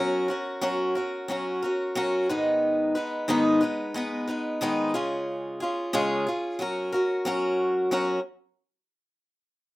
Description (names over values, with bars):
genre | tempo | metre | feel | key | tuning
rock | 90 BPM | 4/4 | straight | F# major | A4 = 440 Hz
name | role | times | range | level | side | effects
picked swing-style acoustic guitar | solo | 0.0-8.2 s | G#2 to B4 | -24 LUFS | equal | none
room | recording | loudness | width
light reverb | rough home demo mix | -24 LUFS | side -18 dB against mid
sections
0.0-7.9 A section; 7.9-9.8 B section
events
none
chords
0.0 F#; 2.3 G#m; 4.9 C#; 6.6 F#